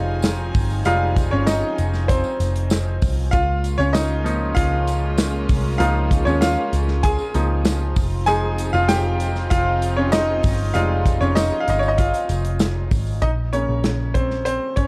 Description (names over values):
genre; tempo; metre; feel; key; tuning
piano-driven pop; 97 BPM; 4/4; straight; F minor; A4 = 443 Hz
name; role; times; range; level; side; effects
bright grand piano; accompaniment; 0.0-14.9 s; Db3 to Ab5; -24 LUFS; equal; none
warm studio string section; sustained chords; 0.0-13.2 s; F3 to Ab5; -33 LUFS; equal; none
vintage muted picked electric bass; bass; 0.0-14.9 s; F1 to Eb2; -24 LUFS; equal; none
modern studio drum kit; drums; 0.2-14.9 s; hi-hat, kick drum, snare drum; -24 LUFS; equal; none
tambourine; percussion; 0.2-13.2 s; none; -43 LUFS; equal; none
room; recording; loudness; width
light reverb; dark, warm production; -20 LUFS; mono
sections
0.0-13.2 A section; 13.2-14.9 B section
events
grand piano solo 0.0-13.2, 13.2-14.9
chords
0.0 Fm7; 3.3 Db6; 8.0 Fm7; 13.2 Bbmadd9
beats
0.24 | 0.86 1.48 2.09 2.71 | 3.33 3.95 4.57 5.19 | 5.80 6.42 7.04 7.66 | 8.28 8.89 9.51 10.13 | 10.75 11.37 11.99 12.60 | 13.22 13.84 14.46